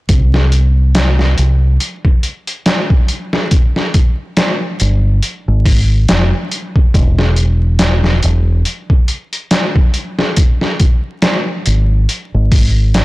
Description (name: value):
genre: trip hop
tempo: 70 BPM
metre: 4/4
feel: swing 57% on 16ths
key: unclear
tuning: A4 = 441 Hz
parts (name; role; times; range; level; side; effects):
- deep dub fingered electric bass; bass; 0.1-13.0 s; E1 to C2; -11 LUFS; equal; transformer saturation
- trip hop sampler-style drum kit; drums; 0.1-13.0 s; hi-hat, kick drum, snare drum; -13 LUFS; equal; none
room: light reverb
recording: blown-out, overdriven recording, vinyl crackle, overdrive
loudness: -11 LUFS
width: side -20 dB against mid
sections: 0.1-13.0 A section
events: none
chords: none